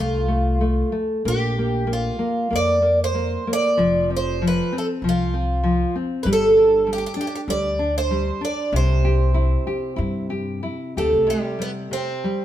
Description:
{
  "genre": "fado-style ballad",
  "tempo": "95 BPM",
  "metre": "4/4",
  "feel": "rubato",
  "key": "C major",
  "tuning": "A4 = 440 Hz",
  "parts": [
    { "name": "picked twelve-string acoustic guitar", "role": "melody", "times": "0.0-12.4 s", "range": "G3 to D5", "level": "-21 LUFS", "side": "right 2 dB", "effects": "none" },
    { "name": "nylon-string guitar", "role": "accompaniment", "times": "0.0-12.4 s", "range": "C3 to G4", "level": "-24 LUFS", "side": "left 1 dB", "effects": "none" },
    { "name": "upright bass", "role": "bass", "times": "0.0-11.3 s", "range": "F1 to G2", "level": "-23 LUFS", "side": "equal", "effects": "none" }
  ],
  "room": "moderate stone room reverb, RT60 1.4 s",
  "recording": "band playing live in one room",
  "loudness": "-18 LUFS",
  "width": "side -12 dB against mid",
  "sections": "0.0-11.3 A section; 11.3-12.4 B section",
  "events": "none",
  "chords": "0.0 F; 1.3 Bb5; 3.8 F5; 6.3 G5; 8.7 C; 11.3 C5",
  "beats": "0.61 | 1.26 1.90 2.53 3.16 | 3.79 4.42 5.04 5.65 | 6.26 6.87 7.48 8.10 | 8.73 9.35 9.99 10.64 | 11.29 11.92"
}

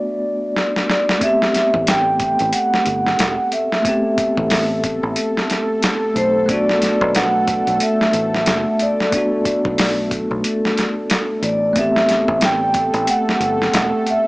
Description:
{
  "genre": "trip hop",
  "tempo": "91 BPM",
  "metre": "4/4",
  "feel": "swing 60% on 16ths",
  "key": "A dorian",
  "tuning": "A4 = 440 Hz",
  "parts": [
    { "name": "vibraphone with medium mallets", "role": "melody", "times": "0.0-14.3 s", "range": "C5 to G5", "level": "-19 LUFS", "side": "equal", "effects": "tape echo" },
    { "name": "bell-like tine electric piano", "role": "accompaniment", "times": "0.0-14.3 s", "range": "A3 to G4", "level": "-23 LUFS", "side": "equal", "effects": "harmonic tremolo" },
    { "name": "dusty soul sampler-style drum kit", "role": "drums", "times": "0.6-14.3 s", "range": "hi-hat, kick drum, snare drum", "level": "-20 LUFS", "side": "equal", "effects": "overdrive, vintage 12-bit sampler grit" },
    { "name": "dark analog pad", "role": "sustained chords", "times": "2.1-14.3 s", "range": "A3 to A4", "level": "-23 LUFS", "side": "equal", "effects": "chorus" },
    { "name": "fingered electric bass", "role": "bass", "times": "1.7-13.9 s", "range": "E1 to B1", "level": "-25 LUFS", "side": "equal", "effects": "none" }
  ],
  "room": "light reverb",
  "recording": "small speaker sound",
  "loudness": "-15 LUFS",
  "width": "side -22 dB against mid",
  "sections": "0.0-1.2 A section; 1.2-14.3 B section",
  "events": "break 0.0-1.2; drum fill 0.6-1.2",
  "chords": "0.0 Bm7; 1.2 Am9; 6.5 Bm7; 11.8 Am9",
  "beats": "0.55 | 1.21 1.87 2.53 3.19 | 3.85 4.51 5.17 5.83 | 6.49 7.14 7.80 8.46 | 9.12 9.78 10.44 11.10 | 11.76 12.42 13.08 13.74"
}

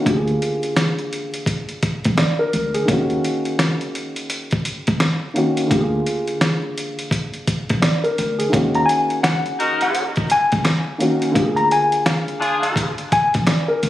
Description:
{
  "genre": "hip hop, boom-bap hip-hop",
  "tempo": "85 BPM",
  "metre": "4/4",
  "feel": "swing 61% on 16ths",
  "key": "Eb minor",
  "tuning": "A4 = 439 Hz",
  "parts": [
    { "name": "dark baby grand piano", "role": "accompaniment", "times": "0.0-13.9 s", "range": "D3 to D5", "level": "-22 LUFS", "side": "equal", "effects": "cassette tape, high-pass filter, low-pass filter" },
    { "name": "upright bass", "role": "bass", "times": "0.1-13.9 s", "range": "Bb1 to Eb2", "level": "-22 LUFS", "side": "equal", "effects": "none" },
    { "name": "trip hop sampler-style drum kit", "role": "drums", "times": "0.1-13.9 s", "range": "hi-hat, kick drum, rim click, snare drum", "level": "-21 LUFS", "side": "equal", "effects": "none" },
    { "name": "mellow electric guitar", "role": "melody", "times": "8.8-13.3 s", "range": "F5 to Bb5", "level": "-19 LUFS", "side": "left 2 dB", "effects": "high-pass filter, low-pass filter" },
    { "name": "finger snap", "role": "percussion", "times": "9.2-13.7 s", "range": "none", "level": "-33 LUFS", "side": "left 2 dB", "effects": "none" },
    { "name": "warm horn section", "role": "stabs", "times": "9.6-12.9 s", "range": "D4 to Bb4", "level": "-23 LUFS", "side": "left 1 dB", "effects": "high-pass filter, low-pass filter, analog delay" }
  ],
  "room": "light reverb",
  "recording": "recorded on a phone in the room, studio reverb, vinyl crackle, compression",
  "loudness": "-17 LUFS",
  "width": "side -14 dB against mid",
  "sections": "0.0-8.5 A section; 8.5-13.9 B section",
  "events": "none",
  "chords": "0.1 Bb7/D; 2.9 Ebm7; 5.7 Bb7/D; 8.5 Ebm7; 11.4 Bb7/D",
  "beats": "| 0.06 0.77 1.47 2.18 | 2.88 3.59 4.29 5.00 | 5.71 6.41 7.12 7.83 | 8.53 9.24 9.94 10.65 | 11.35 12.06 12.77 13.47"
}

